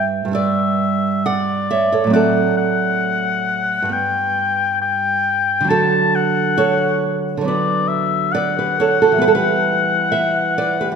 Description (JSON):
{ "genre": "romantic duo for oboe and classical guitar", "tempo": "68 BPM", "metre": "4/4", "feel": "rubato", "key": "D major", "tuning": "A4 = 442 Hz", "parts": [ { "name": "warm oboe", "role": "melody", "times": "0.0-11.0 s", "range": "D5 to A5", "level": "-18 LUFS", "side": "left 5 dB", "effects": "none" }, { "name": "nylon-string guitar", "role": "accompaniment", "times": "0.0-11.0 s", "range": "G2 to F#5", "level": "-18 LUFS", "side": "right 4 dB", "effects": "none" } ], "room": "moderate scoring stage reverb, RT60 1.8 s", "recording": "recorded in a church or concert hall", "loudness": "-15 LUFS", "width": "side -6 dB against mid", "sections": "0.0-11.0 A section", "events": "none", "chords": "0.0 G; 2.1 D7/A; 3.9 G; 5.7 D; 7.5 Bm/D; 9.2 Em" }